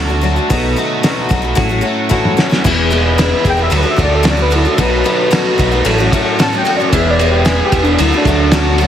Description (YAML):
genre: folk rock and heartland rock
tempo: 112 BPM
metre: 4/4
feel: straight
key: E major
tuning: A4 = 438 Hz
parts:
  - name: picked twelve-string acoustic guitar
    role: accompaniment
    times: 0.0-8.9 s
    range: A2 to G#4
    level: -17 LUFS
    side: left 6 dB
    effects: none
  - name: bright tonewheel organ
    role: sustained chords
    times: 0.0-8.9 s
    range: F#4 to D6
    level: -25 LUFS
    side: right 2 dB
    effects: overdrive, slow rotary speaker
  - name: biting overdriven guitar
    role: riff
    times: 0.0-8.9 s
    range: E2 to G#4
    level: -19 LUFS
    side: right 3 dB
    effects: none
  - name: fingered electric bass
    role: bass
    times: 0.0-8.9 s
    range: E1 to D2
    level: -16 LUFS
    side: right 1 dB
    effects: none
  - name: cloth-damped thuddy drum kit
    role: drums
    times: 0.5-8.9 s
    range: crash cymbal, hi-hat, kick drum, ride cymbal, snare drum, toms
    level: -15 LUFS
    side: right 1 dB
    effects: none
  - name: warm velvety synth lead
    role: melody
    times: 3.5-8.9 s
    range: D4 to A5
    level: -17 LUFS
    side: equal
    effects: chorus, slapback echo
room: light reverb, studio reverb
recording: heavily compressed radio sound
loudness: -11 LUFS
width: side -10 dB against mid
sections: 0.0-2.6 A section; 2.6-8.9 B section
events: drum fill 2.1-2.6; soft synth lead solo 2.6-8.9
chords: 0.0 D; 0.5 B7; 1.6 A6; 2.6 E; 3.7 D; 4.8 B7; 5.9 A6; 6.9 E; 8.0 D